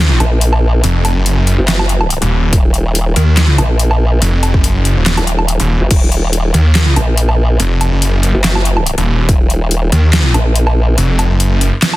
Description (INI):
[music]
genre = heavy wobble dubstep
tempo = 142 BPM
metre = 4/4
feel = swing 54% on 16ths, half-time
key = Eb minor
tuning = A4 = 440 Hz
[part]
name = snarling distorted saw bass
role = bass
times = 0.0-11.7 s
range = Eb1 to Eb2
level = -11 LUFS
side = equal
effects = distortion, overdrive
[part]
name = formant-sweep wobble bass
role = bass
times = 0.2-11.0 s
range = Eb1 to Bb1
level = -12 LUFS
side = equal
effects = chorus, overdrive
[part]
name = dubstep drum kit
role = drums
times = 0.2-12.0 s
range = crash cymbal, handclaps, hi-hat, snare drum, woodblock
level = -17 LUFS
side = equal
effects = overdrive
[part]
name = electronic kick drum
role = drums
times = 2.5-6.0, 9.3-9.4 s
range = none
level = -12 LUFS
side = equal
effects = overdrive
[sound]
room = little or no reverb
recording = dense, heavily limited modern master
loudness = -10 LUFS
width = side -17 dB against mid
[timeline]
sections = 0.0-12.0 A section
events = none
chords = 0.0 Ebm